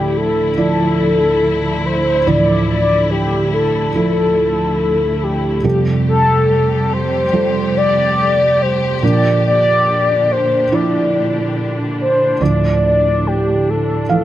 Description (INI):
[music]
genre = pop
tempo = 71 BPM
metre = 4/4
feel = straight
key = D minor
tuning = A4 = 440 Hz
[part]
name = mellow horn-like synth lead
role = melody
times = 0.0-14.2 s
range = G4 to D5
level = -16 LUFS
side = left 1 dB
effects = chorus
[part]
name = felt-muted upright piano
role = accompaniment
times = 0.0-14.2 s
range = D2 to F5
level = -17 LUFS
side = right 2 dB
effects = none
[part]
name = dark studio string section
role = sustained chords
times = 0.0-14.2 s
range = A2 to G4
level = -22 LUFS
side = left 2 dB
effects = none
[sound]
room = light reverb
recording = none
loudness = -13 LUFS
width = side -13 dB against mid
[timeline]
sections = 0.0-14.2 A section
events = none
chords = 0.0 Dmadd9; 5.6 Fadd9; 9.0 Bb; 12.4 Dmadd9